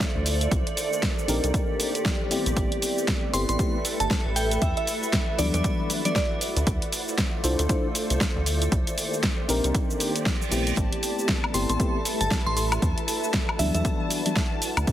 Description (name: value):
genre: deep house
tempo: 117 BPM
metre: 4/4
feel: swing 60% on 16ths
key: A minor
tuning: A4 = 440 Hz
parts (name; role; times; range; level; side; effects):
- soft string machine; sustained chords; 0.0-14.9 s; Eb3 to D5; -34 LUFS; equal; ensemble chorus, sidechain pumping
- deep house drum kit; drums; 0.0-14.9 s; hi-hat, shaker, snare drum, woodblock; -28 LUFS; equal; overdrive
- electronic kick drum; drums; 0.0-14.9 s; none; -26 LUFS; equal; overdrive
- granular cloud pad; texture; 0.0-14.9 s; G4 to B5; -33 LUFS; right 2 dB; built-in reverb, sidechain pumping
- rubbery square bass; bass; 0.2-14.9 s; G1 to E2; -26 LUFS; equal; sidechain pumping
- mellow FM electric piano; stabs; 1.3-14.3 s; E3 to C5; -29 LUFS; left 2 dB; chorus, sidechain pumping, digital delay
- glassy synth bell; melody; 3.3-6.3, 11.5-13.8 s; D5 to C6; -30 LUFS; right 1 dB; chorus, phaser, digital delay
- reverse cymbal; sound effects; 10.1-10.8 s; none; -35 LUFS; right 6 dB; none
- rich chamber violin section; texture; 10.8-14.9 s; A5; -36 LUFS; left 4 dB; sidechain pumping
room: light reverb, digital ambience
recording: heavily compressed radio sound, multiband compression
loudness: -22 LUFS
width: side -12 dB against mid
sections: 0.0-14.9 A section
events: reverse cymbal 10.1-10.8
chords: 0.0 Dm9; 0.5 Cm9; 2.6 Am9; 4.6 Em9; 6.7 Dm9; 8.7 Cm9; 10.8 Am9; 12.8 Em9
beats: 0.00 | 0.52 1.03 1.54 2.05 | 2.57 3.08 3.59 4.11 | 4.62 5.13 5.64 6.16 | 6.67 7.18 7.70 8.21 | 8.72 9.23 9.75 10.26 | 10.77 11.28 11.80 12.31 | 12.82 13.34 13.85 14.36 | 14.87